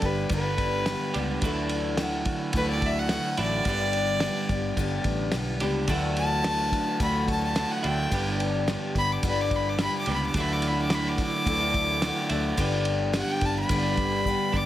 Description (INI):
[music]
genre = folk rock and heartland rock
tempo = 108 BPM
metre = 4/4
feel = straight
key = unclear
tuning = A4 = 441 Hz
[part]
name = clear fiddle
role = melody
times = 0.0-14.7 s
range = B4 to D6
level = -29 LUFS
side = left 1 dB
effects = slapback echo
[part]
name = picked twelve-string acoustic guitar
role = accompaniment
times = 0.0-14.7 s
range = G2 to G4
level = -31 LUFS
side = left 5 dB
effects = none
[part]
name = twelve-string electric guitar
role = riff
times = 0.0-14.7 s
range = G2 to G4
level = -30 LUFS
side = right 4 dB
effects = none
[part]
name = vintage muted picked electric bass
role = bass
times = 0.0-14.7 s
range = G1 to D2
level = -31 LUFS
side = equal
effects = none
[part]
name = cloth-damped thuddy drum kit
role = drums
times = 0.0-14.7 s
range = kick drum, ride cymbal, snare drum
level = -30 LUFS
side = equal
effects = none
[sound]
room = light reverb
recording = none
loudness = -24 LUFS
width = side -13 dB against mid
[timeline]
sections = 0.0-14.7 A section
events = fiddle solo 0.0-14.7; drum fill 14.3-14.7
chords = 0.0 G; 1.4 Dadd9; 3.7 G; 5.9 Dadd9; 8.1 G; 10.4 Dadd9; 12.6 G